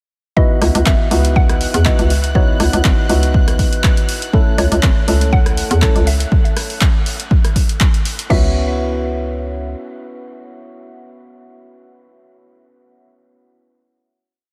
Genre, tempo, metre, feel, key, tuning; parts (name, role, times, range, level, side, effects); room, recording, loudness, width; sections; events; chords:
deep house; 121 BPM; 4/4; swing 54% on 16ths; C# minor; A4 = 440 Hz
mallet-like synth pluck; melody; 0.4-12.1 s; C#5 to F#5; -29 LUFS; equal; chorus, analog delay
percussive organ stab; stabs; 0.4-12.1 s; A3 to A4; -25 LUFS; equal; chorus, sidechain pumping, analog delay
electronic kick drum; drums; 0.4-8.4 s; -16 LUFS; equal
analog string pad; texture; 0.4-8.3 s; F#6; -33 LUFS; equal; ensemble chorus
hollow knocking FM bass; bass; 0.6-9.7 s; G#1 to E2; -18 LUFS; equal; sidechain pumping
punchy analog drum machine; drums; 0.6-8.4 s; crash cymbal, handclaps, hi-hat, rim click; -25 LUFS; equal
light reverb; -15 LUFS; mono
0.4-8.3 drop; 8.3-12.3 final chord
drop 0.4-8.3
0.4 C#m11; 4.3 A; 8.3 C#m7